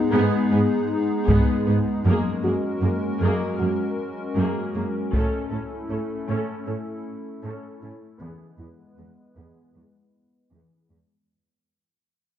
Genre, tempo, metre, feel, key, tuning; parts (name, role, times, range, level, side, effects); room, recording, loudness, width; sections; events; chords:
cinematic, hybrid orchestral and electronic film score; 78 BPM; 4/4; straight; A4 = 440 Hz
hollow soft pad; sustained chords; 0.0-11.3 s; G#3 to B4; -26 LUFS; left 2 dB; chorus, low-pass filter
warm symphonic viola section; accompaniment; 0.1-11.0 s; A#3 to A4; -28 LUFS; right 1 dB; low-pass filter
harp-like synth pluck; arpeggios; 0.1-11.1 s; E3 to A4; -30 LUFS; left 4 dB; chorus, low-pass filter, digital delay
warm symphonic cello section; bass; 0.1-11.0 s; E2 to A2; -25 LUFS; right 2 dB
taiko ensemble; drums; 1.3-6.6 s; -25 LUFS; left 1 dB
wet concert hall reverb, RT60 1.9 s; dark, warm production, nothing above 7.8 kHz; -21 LUFS; side -10 dB against mid
0.0-11.3 A section
fade-out 0.0-11.3; filter sweep 0.0-11.3
0.0 G#m; 2.1 F#add9; 5.1 A; 8.2 E